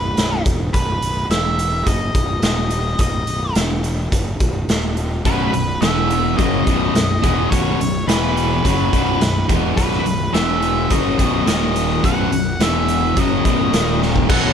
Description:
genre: classic rock.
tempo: 106 BPM.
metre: 4/4.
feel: straight.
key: B major.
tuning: A4 = 439 Hz.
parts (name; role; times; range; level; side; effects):
octave-fuzz lead guitar; melody; 0.0-14.5 s; B4 to F#5; -23 LUFS; equal; distortion.
fuzz fingered electric bass; bass; 0.0-14.5 s; B0 to F#1; -22 LUFS; equal; overdrive.
raw garage drum kit; drums; 0.2-14.4 s; crash cymbal, hi-hat, kick drum, snare drum; -20 LUFS; equal; none.
cranked stack guitar; riff; 5.3-14.5 s; B1 to D#4; -18 LUFS; left 1 dB; overdrive.
room: light reverb.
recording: none.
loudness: -15 LUFS.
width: side -8 dB against mid.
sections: 0.0-14.3 A section.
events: drum fill 14.0.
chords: 0.0 B5; 1.3 N.C.; 1.9 B; 2.4 N.C.; 3.0 B; 3.6 N.C.; 4.1 B5; 4.7 N.C.; 5.3 B5; 5.8 E5; 6.4 B; 8.1 E5; 8.6 B5; 10.3 E5; 10.9 B; 11.5 D#5; 12.0 B5; 12.6 E5; 13.2 B; 13.7 D#5.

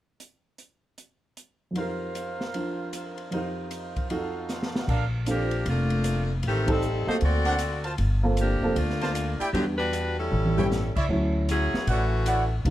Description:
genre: jazz, big band swing.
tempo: 154 BPM.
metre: 4/4.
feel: swing 64% on 8ths.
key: unclear.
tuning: A4 = 440 Hz.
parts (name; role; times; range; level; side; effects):
open jazz drum kit; drums; 0.2-12.7 s; crash cymbal, hi-hat, kick drum, ride cymbal, snare drum, toms; -33 LUFS; equal; none.
dark baby grand piano; accompaniment; 1.7-12.7 s; F2 to Bb4; -30 LUFS; right 1 dB; none.
clear trumpet section; stabs; 1.8-5.1, 7.5-12.4 s; D4 to C6; -32 LUFS; right 2 dB; none.
upright bass; bass; 4.9-12.7 s; F1 to E2; -26 LUFS; equal; none.
edgy saxophone section; melody; 5.3-12.5 s; D3 to D5; -28 LUFS; left 1 dB; none.
room: light reverb.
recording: dark, warm production.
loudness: -24 LUFS.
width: side -14 dB against mid.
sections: 0.2-1.8 A section; 1.8-4.9 B section; 4.9-12.7 C section.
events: drum fill 4.5-4.9, 10.3-10.7; band accent 6.6.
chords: 0.2 N.C.; 1.8 F7sus4; 4.1 F7b9; 4.9 Bbmaj7; 6.4 Am7b5; 7.2 D7b13; 8.0 Gm11; 9.5 Em9; 10.3 A7; 11.1 Dmaj9.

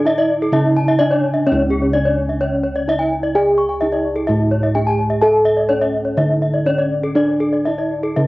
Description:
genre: Balinese gamelan.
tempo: 128 BPM.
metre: 4/4.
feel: straight.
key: C# pelog.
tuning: A4 = 440 Hz.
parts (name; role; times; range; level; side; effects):
gamelan-type bronze metallophone; melody; 0.0-8.3 s; C#4 to A4-40c; -22 LUFS; right 2 dB; cassette tape.
gamelan-type bronze metallophone; arpeggios; 0.0-8.3 s; G#4-45c to C#6; -19 LUFS; left 1 dB; tape echo.
gamelan-type bossed gongs; bass; 0.0-8.3 s; C#2 to A4-40c; -18 LUFS; equal; none.
room: moderate spring reverb, RT60 1.3 s.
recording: home recording on cassette, nothing above 7.9 kHz.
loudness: -14 LUFS.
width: side -19 dB against mid.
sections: 0.0-8.3 A section.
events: none.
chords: none.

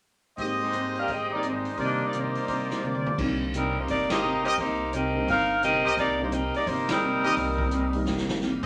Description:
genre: jazz, big band swing.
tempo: 172 BPM.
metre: 4/4.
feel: swing 63% on 8ths.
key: C minor.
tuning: A4 = 440 Hz.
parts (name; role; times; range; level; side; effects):
dark concert grand piano; accompaniment; 0.4-8.4 s; Ab2 to D5; -35 LUFS; equal; none.
picked steel-string acoustic guitar; accompaniment; 0.4-8.7 s; Ab2 to Eb4; -35 LUFS; equal; none.
bright trumpet section; stabs; 0.4-8.7 s; Eb4 to Eb5; -31 LUFS; equal; none.
swinging big-band drum kit; drums; 0.4-8.7 s; crash cymbal, hi-hat, kick drum, ride cymbal, snare drum, toms; -37 LUFS; equal; none.
mellow saxophone section; melody; 0.6-8.2 s; G3 to F5; -29 LUFS; equal; none.
upright bass; bass; 3.2-8.7 s; G1 to C2; -37 LUFS; equal; none.
room: wet small room reverb, RT60 0.6 s.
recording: none.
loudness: -26 LUFS.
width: mono.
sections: 0.4-3.2 A section; 3.2-8.7 B section.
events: drum fill 2.8-3.2, 8.1-8.4; band accent 4.0, 6.8.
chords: 0.4 Abmaj7; 1.8 Cm9; 3.2 Cm7.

